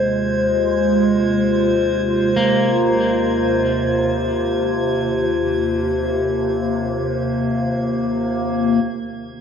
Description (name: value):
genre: ambient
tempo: free time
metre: none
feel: none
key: unclear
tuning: A4 = 438 Hz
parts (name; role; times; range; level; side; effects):
- warbly tape-like pad; sustained chords; 0.0-9.4 s; Eb2 to C5; -17 LUFS; equal; chorus, built-in reverb, phaser
- drifting glass-harmonics texture; texture; 0.0-9.4 s; Ab6; -33 LUFS; right 2 dB; chorus, built-in reverb
- electric guitar at the edge of break-up; arpeggios; 2.4-5.1 s; Bb3; -23 LUFS; equal; ping-pong delay
room: wet concert hall reverb, RT60 2.0 s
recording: worn, warbling old tape, cassette tape, warbly pitch drift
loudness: -16 LUFS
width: side -7 dB against mid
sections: 0.0-8.8 A section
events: fade-out on synth texture 0.0-8.8; filter sweep on ambient pad 0.0-8.8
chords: 0.0 Fm/Eb; 8.8 Ebm